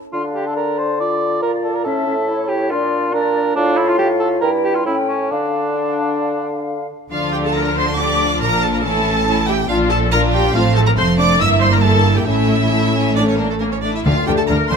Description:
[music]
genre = quick classical-period movement for symphony orchestra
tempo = 129-142 BPM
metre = 4/4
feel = straight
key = D minor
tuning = A4 = 439 Hz
[part]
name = clear clarinet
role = second line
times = 0.1-6.9 s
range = C#4 to F4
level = -24 LUFS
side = left 2 dB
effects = none
[part]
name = dark cor anglais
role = second line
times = 0.1-6.7 s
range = C#4 to D5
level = -20 LUFS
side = right 2 dB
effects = none
[part]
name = flute section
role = second line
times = 0.1-6.9 s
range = C#5 to G5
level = -25 LUFS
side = left 3 dB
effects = none
[part]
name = mellow bassoon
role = accompaniment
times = 0.1-6.9 s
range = G2 to D3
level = -21 LUFS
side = right 1 dB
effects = none
[part]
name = clear chamber violin section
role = melody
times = 7.1-14.8 s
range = A4 to E6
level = -22 LUFS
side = right 1 dB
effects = none
[part]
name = rich chamber violin section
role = second line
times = 7.1-14.8 s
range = A3 to G4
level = -23 LUFS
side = left 1 dB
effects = none
[part]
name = clear studio viola section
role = accompaniment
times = 7.1-14.8 s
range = A3 to E5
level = -19 LUFS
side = equal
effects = none
[part]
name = mellow French horn section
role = sustained chords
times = 7.1-14.8 s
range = E3 to E4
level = -22 LUFS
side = left 6 dB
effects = none
[part]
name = clear studio cello section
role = bass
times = 7.1-14.8 s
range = F2 to D3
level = -21 LUFS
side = right 2 dB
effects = none
[part]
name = rich symphonic double bass section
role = bass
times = 7.1-14.8 s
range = F1 to D2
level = -20 LUFS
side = right 3 dB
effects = none
[part]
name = timpani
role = percussion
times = 14.1-14.7 s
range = D3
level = -22 LUFS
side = left 2 dB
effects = none
[sound]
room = light reverb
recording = close, detailed microphones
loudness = -14 LUFS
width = side -6 dB against mid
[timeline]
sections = 0.0-7.1 A section; 7.1-14.8 A section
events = none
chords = 0.1 Dm; 1.9 A; 2.7 Bb; 3.6 F/A; 4.4 Edim/G; 4.9 A7; 5.3 Dm; 8.8 A; 9.7 Bb; 10.5 F/A; 11.4 Edim/G; 12.3 A; 14.1 D5

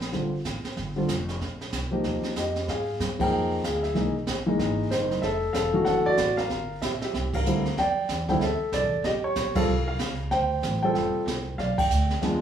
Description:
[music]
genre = jazz piano trio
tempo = 189 BPM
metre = 4/4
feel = swing 62% on 8ths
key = F major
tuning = A4 = 438 Hz
[part]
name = upright bass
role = bass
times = 0.0-12.4 s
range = E1 to Ab2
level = -31 LUFS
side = right 1 dB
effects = none
[part]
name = jazz brush drum kit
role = drums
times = 0.0-12.4 s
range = brushed snare drum, hi-hat, kick drum, ride cymbal, snare drum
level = -32 LUFS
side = right 2 dB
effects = none
[part]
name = warm baby grand piano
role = melody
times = 0.1-12.4 s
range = D3 to G5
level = -25 LUFS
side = equal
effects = none
[sound]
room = wet small room reverb, RT60 0.5 s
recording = band playing live in one room, studio reverb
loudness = -24 LUFS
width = side -9 dB against mid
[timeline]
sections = 0.0-7.8 A section; 7.8-12.4 B section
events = band accent 3.2, 7.3, 9.5, 11.7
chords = 0.1 Gsus2; 1.4 Bbsus2; 2.0 Ebadd9; 2.7 Ab5; 4.0 C7alt; 5.2 Fmaj7; 5.9 D; 6.5 Gm7; 7.1 C9; 7.8 F69; 9.0 A7alt; 10.3 Dm7; 11.6 Bdim

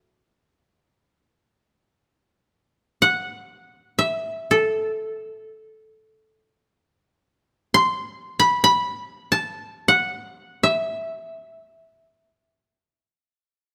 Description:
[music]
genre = japanese traditional, Japanese chamber music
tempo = free time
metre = none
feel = none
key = unclear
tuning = A4 = 439 Hz
[part]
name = koto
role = solo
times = 0.0-13.1 s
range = E4 to C6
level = -21 LUFS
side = equal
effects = none
[sound]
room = light reverb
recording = close, detailed microphones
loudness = -22 LUFS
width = mono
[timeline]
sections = 0.0-6.9 A section; 6.9-13.7 A section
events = none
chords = none

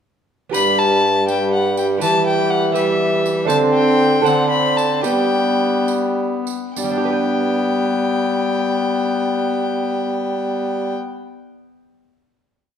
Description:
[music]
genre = classical, renaissance-style consort dance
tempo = 66-81 BPM (dotted quarters)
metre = 6/8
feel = straight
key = G major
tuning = A4 = 440 Hz
[part]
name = rich violin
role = melody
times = 0.5-10.9 s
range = E5 to B5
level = -21 LUFS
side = left 4 dB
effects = none
[part]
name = lute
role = accompaniment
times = 0.5-11.3 s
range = G2 to G5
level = -23 LUFS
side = right 4 dB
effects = none
[part]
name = tambourine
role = percussion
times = 0.5-7.0 s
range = none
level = -33 LUFS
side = right 10 dB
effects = none
[part]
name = rich viola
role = accompaniment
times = 0.6-10.9 s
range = G3 to C4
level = -21 LUFS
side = left 2 dB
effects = none
[part]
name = warm bassoon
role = bass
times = 0.6-10.9 s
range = G2 to G3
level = -21 LUFS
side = right 2 dB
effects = none
[sound]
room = wet recital hall reverb, RT60 1.6 s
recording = dark, warm production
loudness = -16 LUFS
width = side -8 dB against mid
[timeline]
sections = 0.5-6.8 A section; 6.8-10.4 final chord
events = slowing down 2.8-6.8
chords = 0.5 G; 2.0 Em; 3.5 D5; 5.1 G

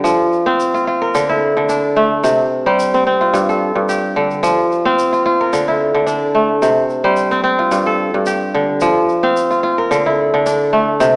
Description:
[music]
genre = west african traditional, West African string and xylophone music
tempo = 110 BPM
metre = 4/4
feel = swing 54% on 16ths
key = F major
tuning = A4 = 435 Hz
[part]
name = kora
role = arpeggios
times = 0.0-11.2 s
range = G2 to F5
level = -12 LUFS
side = equal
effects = none
[part]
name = tube shaker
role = percussion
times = 0.1-11.1 s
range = none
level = -34 LUFS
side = left 1 dB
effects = none
[sound]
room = wet recital hall reverb, RT60 1.6 s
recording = small speaker sound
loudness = -12 LUFS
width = side -33 dB against mid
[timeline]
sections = 0.0-11.2 A section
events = none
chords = 0.0 F5; 1.1 D5; 2.2 C5; 3.3 G5; 4.4 F5; 5.5 D5; 6.6 C5; 7.7 G5; 8.8 F5; 9.9 D5

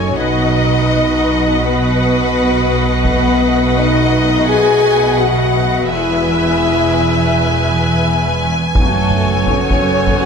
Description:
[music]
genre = cinematic, epic orchestral film score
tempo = 84 BPM (dotted quarters)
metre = 12/8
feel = straight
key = unclear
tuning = A4 = 442 Hz
[part]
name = rich symphonic violin section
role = melody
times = 0.0-10.3 s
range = F#5 to G#5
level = -22 LUFS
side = left 4 dB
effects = none
[part]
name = rich symphonic violin section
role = second line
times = 0.0-10.3 s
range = A4 to G#5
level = -21 LUFS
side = left 3 dB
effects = none
[part]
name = clear symphonic viola section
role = accompaniment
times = 0.0-10.3 s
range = A4 to E5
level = -21 LUFS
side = right 1 dB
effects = none
[part]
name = clear woodwind section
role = sustained chords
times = 0.0-10.3 s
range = A3 to G#5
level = -23 LUFS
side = left 1 dB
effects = none
[part]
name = mellow French horn section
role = sustained chords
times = 0.0-10.3 s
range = A3 to G#4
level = -17 LUFS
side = left 3 dB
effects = none
[part]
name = rich symphonic cello section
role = bass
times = 0.0-10.3 s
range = E2 to B2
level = -20 LUFS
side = right 3 dB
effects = none
[part]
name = rich symphonic double bass section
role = bass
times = 0.0-10.3 s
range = E1 to B1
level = -20 LUFS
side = right 4 dB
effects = none
[part]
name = taiko ensemble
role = drums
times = 3.0-4.0, 8.8-10.3 s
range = none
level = -18 LUFS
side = equal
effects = none
[sound]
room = wet scoring stage reverb, RT60 2.0 s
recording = none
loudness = -12 LUFS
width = side -6 dB against mid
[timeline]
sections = 0.0-10.3 A section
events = none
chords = 0.2 B; 3.0 B7; 5.9 E; 8.8 F#madd9

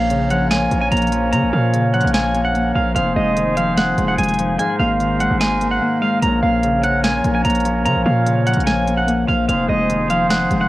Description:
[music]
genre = hip hop, trap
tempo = 147 BPM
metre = 4/4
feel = half-time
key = Bb minor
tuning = A4 = 439 Hz
[part]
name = electric guitar at the edge of break-up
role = melody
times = 0.0-10.7 s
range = Eb5 to Bb5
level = -20 LUFS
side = right 2 dB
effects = low-pass filter
[part]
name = Celtic harp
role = accompaniment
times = 0.0-10.7 s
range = F2 to Bb3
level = -19 LUFS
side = left 2 dB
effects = low-pass filter, cassette tape
[part]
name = mellow woodwind section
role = sustained chords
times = 0.0-10.7 s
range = F3 to Db5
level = -24 LUFS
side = right 2 dB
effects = cassette tape
[part]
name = hard-hitting 808-style bass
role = bass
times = 0.0-10.7 s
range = F1 to Db3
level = -22 LUFS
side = right 1 dB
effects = none
[part]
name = trap drum kit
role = drums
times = 0.1-10.6 s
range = hi-hat, snare drum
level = -25 LUFS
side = right 1 dB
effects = none
[sound]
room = light reverb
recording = home recording on cassette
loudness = -15 LUFS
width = side -16 dB against mid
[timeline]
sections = 0.0-10.7 A section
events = drums muted 5.8-6.2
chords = 0.0 Bbm; 3.0 Fm7; 4.6 Abadd9; 6.2 Bbm; 9.5 Fm7

